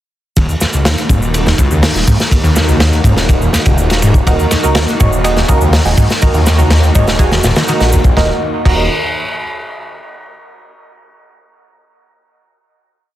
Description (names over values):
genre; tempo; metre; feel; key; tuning
breakbeat, breaks; 123 BPM; 4/4; straight; Eb minor; A4 = 439 Hz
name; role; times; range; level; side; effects
lush unison pad; sustained chords; 0.5-8.4 s; Bb3 to Gb4; -21 LUFS; right 1 dB; chorus, phaser, sidechain pumping
phased detuned saw bass; bass; 0.4-8.9 s; Eb1 to Eb2; -14 LUFS; equal; phaser
crunchy breakbeat drum kit; drums; 0.4-8.8 s; crash cymbal, hi-hat, kick drum, ride cymbal, snare drum; -13 LUFS; equal; none
shaker; drums; 0.4-8.1 s; none; -27 LUFS; equal; overdrive
overdriven acid bass; riff; 0.5-8.9 s; Eb1 to Eb3; -16 LUFS; equal; wide subtle chorus
band-passed chord stab; stabs; 4.3-8.8 s; Eb4 to Db5; -18 LUFS; right 3 dB; chorus, phaser, dub echo
room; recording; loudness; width
light reverb; dense, heavily limited modern master; -9 LUFS; side -13 dB against mid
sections
0.4-8.2 groove; 8.2-10.1 final chord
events
none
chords
0.4 Ebm